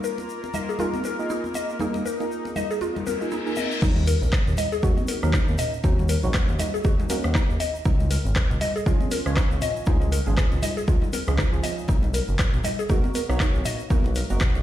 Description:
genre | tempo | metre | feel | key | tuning
afro house | 119 BPM | 4/4 | swing 58% on 16ths | Eb minor | A4 = 441 Hz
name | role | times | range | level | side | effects
warm analog pad | sustained chords | 0.0-3.8 s | Bb3 to Bb4 | -34 LUFS | left 2 dB | chorus, tremolo, sidechain pumping
mallet-like synth pluck | arpeggios | 0.0-14.3 s | Eb4 to Eb5 | -30 LUFS | left 1 dB | lush chorus, sidechain pumping, digital delay
tube shaker | percussion | 0.0-14.6 s | none | -41 LUFS | left 2 dB | none
congas | percussion | 0.2-14.6 s | none | -33 LUFS | left 3 dB | none
deep mellow chord stab | stabs | 0.8-14.6 s | F3 to Eb5 | -31 LUFS | right 3 dB | chorus, cassette tape, sidechain pumping, digital delay
reverse cymbal | sound effects | 3.0-3.8 s | none | -32 LUFS | left 4 dB | none
smooth synth bass | bass | 3.8-14.6 s | F#1 to Eb2 | -24 LUFS | equal | sidechain pumping
afro-pop drum kit | drums | 3.8-14.5 s | crash cymbal, handclaps, hi-hat, rim click, toms | -29 LUFS | equal | overdrive
electronic kick drum | drums | 3.8-14.5 s | none | -22 LUFS | equal | overdrive
room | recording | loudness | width
light reverb, digital ambience | played on a big sound system in a bare room, stone room reverb | -21 LUFS | side -12 dB against mid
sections
0.0-3.8 A section; 3.8-14.6 B section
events
reverse cymbal 3.0-3.8; drop 3.8-14.6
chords
0.0 Bb7sus4; 3.8 Ebm7; 7.9 Db; 11.9 Bmaj7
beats
0.29 0.80 1.30 | 1.80 2.31 2.81 3.32 | 3.82 4.33 4.83 5.33 | 5.84 6.34 6.85 7.35 | 7.85 8.36 8.86 9.37 | 9.87 10.38 10.88 11.38 | 11.89 12.39 12.90 13.40 | 13.90 14.41

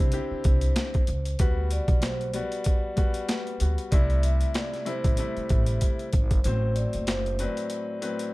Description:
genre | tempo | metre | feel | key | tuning
hip hop, boom-bap hip-hop | 95 BPM | 4/4 | swing 56% on 16ths | A dorian | A4 = 440 Hz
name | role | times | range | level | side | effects
vibraphone with soft mallets | melody | 0.0-8.3 s | B4 to E5 | -33 LUFS | right 1 dB | high-pass filter, low-pass filter, ping-pong delay
warm concert grand piano | accompaniment | 0.0-8.3 s | A2 to C5 | -33 LUFS | left 3 dB | cassette tape, high-pass filter, low-pass filter
upright bass | bass | 0.0-7.4 s | F#1 to D2 | -26 LUFS | equal | none
boom bap sampler-style drum kit | drums | 0.1-8.3 s | hi-hat, kick drum, snare drum | -25 LUFS | equal | overdrive
room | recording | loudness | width
little or no reverb | dark, warm production | -23 LUFS | side -20 dB against mid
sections
0.0-6.4 A section; 6.4-8.3 B section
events
drum fill 5.8-6.4; break 6.4-8.3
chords
0.0 D9sus4; 1.4 Gmaj7; 3.9 C6; 6.4 Am69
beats
0.13 0.77 | 1.40 2.03 2.66 3.29 | 3.92 4.55 5.19 5.82 | 6.45 7.08 7.71

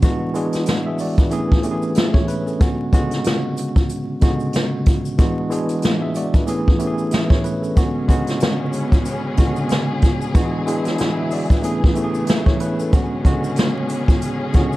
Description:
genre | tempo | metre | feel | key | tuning
hip hop, boom-bap hip-hop | 93 BPM | 4/4 | swing 59% on 16ths | B dorian | A4 = 437 Hz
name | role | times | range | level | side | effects
tine electric piano | accompaniment | 0.0-14.8 s | C#3 to F#5 | -21 LUFS | equal | overdrive, fast stereo tremolo, cassette tape, high-pass filter, low-pass filter
jazz brush drum kit | drums | 0.0-14.7 s | hi-hat, kick drum, snare drum | -18 LUFS | equal | none
tube shaker | percussion | 0.0-14.8 s | none | -44 LUFS | left 8 dB | none
warm studio string section | sustained chords | 7.8-14.8 s | C#3 to G#4 | -27 LUFS | left 2 dB | high-pass filter, low-pass filter
room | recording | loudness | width
small room reverb | dark, warm production, vinyl crackle | -16 LUFS | side -17 dB against mid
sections
0.0-14.8 A section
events
none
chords
0.0 E9; 1.3 Amaj9; 2.6 Bm69; 5.2 E9; 6.5 Amaj9; 7.8 Bm69; 10.3 E9; 11.6 Amaj9; 12.9 Bm69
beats
| 0.03 0.67 1.32 1.96 | 2.61 3.25 3.90 4.54 | 5.19 5.83 6.48 7.12 | 7.77 8.41 9.06 9.70 | 10.35 10.99 11.64 12.28 | 12.93 13.57 14.22

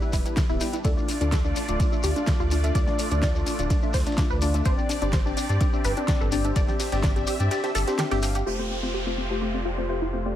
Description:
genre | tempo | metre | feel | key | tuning
progressive house | 126 BPM | 4/4 | straight | D dorian | A4 = 439 Hz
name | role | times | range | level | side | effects
filtered supersaw swell | sustained chords | 0.0-10.4 s | G3 to E5 | -33 LUFS | right 1 dB | phaser, sidechain pumping
tight sequenced synth | arpeggios | 0.0-10.3 s | C4 to D5 | -31 LUFS | equal | chorus, sidechain pumping, tape echo
deep mellow chord stab | stabs | 0.0-10.4 s | A3 to G5 | -30 LUFS | left 4 dB | chorus, sidechain pumping, tape echo
shekere | percussion | 0.0-8.4 s | none | -37 LUFS | left 4 dB | none
round analog bass | bass | 0.1-10.4 s | D1 to G2 | -27 LUFS | equal | sidechain pumping
deep house drum kit | drums | 0.1-8.6 s | crash cymbal, hi-hat, snare drum | -32 LUFS | equal | overdrive, sidechain pumping on hats, low-pass filter on hats, sidechain pumping on cymbals, low-pass filter on cymbals, low-pass filter on snare
dusty soul sampler-style drum kit | drums | 0.1-8.5 s | ride cymbal, snare drum | -43 LUFS | right 3 dB | none
electronic kick drum | drums | 0.1-7.1 s | none | -25 LUFS | equal | overdrive
downlifter | sound effects | 8.5-10.4 s | none | -34 LUFS | right 1 dB | none
room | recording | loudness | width
digital ambience | none | -22 LUFS | side -11 dB against mid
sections
0.0-8.5 A section; 8.5-10.4 B section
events
filter sweep on synth arpeggio sound 0.0-8.5, 8.5-10.4; kick drops out 7.5-8.5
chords
0.0 Em7; 0.8 Dm; 4.7 Gsus4; 8.5 Fadd9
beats
0.37 | 0.85 1.32 1.80 2.27 | 2.75 3.23 3.70 4.18 | 4.66 5.13 5.61 6.08 | 6.56 7.04 7.51 7.99 | 8.46 8.94 9.42 9.89

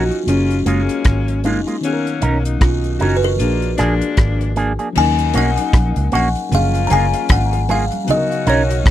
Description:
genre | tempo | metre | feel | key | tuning
lovers rock reggae | 77 BPM | 4/4 | swing 59% on 16ths | Eb minor | A4 = 441 Hz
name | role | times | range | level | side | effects
buzzing kalimba | melody | 0.0-8.9 s | Db4 to Bb5 | -20 LUFS | left 1 dB | tape echo
clear saxophone section | second line | 0.0-8.9 s | F#3 to F#4 | -25 LUFS | left 7 dB | none
mellow FM electric piano | accompaniment | 0.0-8.9 s | C#3 to Bb4 | -25 LUFS | left 4 dB | chorus
electric guitar with an envelope filter | stabs | 0.0-8.6 s | Ab3 to A#4 | -19 LUFS | right 4 dB | none
vintage muted fingered electric bass | bass | 0.0-8.9 s | Gb1 to Eb2 | -18 LUFS | equal | none
damped 70s drum kit | drums | 0.1-8.9 s | crash cymbal, hi-hat, kick drum, rim click | -17 LUFS | equal | none
congas | percussion | 5.0-8.3 s | none | -24 LUFS | right 3 dB | none
room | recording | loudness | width
little or no reverb | dry, close 1970s-style studio recording | -14 LUFS | side -12 dB against mid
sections
0.0-5.0 A section; 5.0-8.9 B section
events
none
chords
0.3 Gbmaj9; 1.8 Bmaj9; 3.4 Bb7; 5.0 Ebm7; 6.5 Gbmaj9; 8.1 Bmaj9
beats
0.27 1.05 | 1.83 2.62 3.40 4.18 | 4.96 5.74 6.52 7.30 | 8.08 8.86

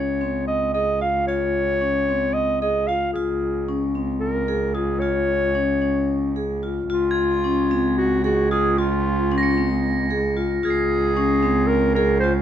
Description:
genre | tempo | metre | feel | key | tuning
contemporary instrumental, chamber music in an uneven meter | 225 BPM (eighths) | 7/8 | straight | Db major | A4 = 440 Hz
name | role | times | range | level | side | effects
clear clarinet | melody | 0.0-12.3 s | F4 to F5 | -23 LUFS | right 1 dB | none
vibraphone with medium hard mallets | arpeggios | 0.0-12.4 s | C4 to Ab4 | -23 LUFS | left 4 dB | none
muted cello | bass | 0.0-12.4 s | Db2 | -25 LUFS | right 4 dB | none
crotales | texture | 7.1-11.6 s | Ab6 to Db7 | -30 LUFS | right 2 dB | none
room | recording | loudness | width
light reverb | dark, warm production | -19 LUFS | side -10 dB against mid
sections
0.0-6.9 A section; 6.9-12.4 A section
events
none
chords
0.0 Dbmaj7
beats
0.21 0.48 0.75 1.01 | 1.28 1.54 1.81 2.08 2.34 2.61 2.88 | 3.14 3.41 3.68 3.94 4.21 4.47 4.74 | 5.01 5.27 5.54 5.81 6.08 6.35 6.62 | 6.90 7.17 7.43 7.70 7.97 8.24 8.51 | 8.78 9.04 9.31 9.57 9.83 10.10 10.36 | 10.63 10.89 11.16 11.42 11.69 11.96 12.22

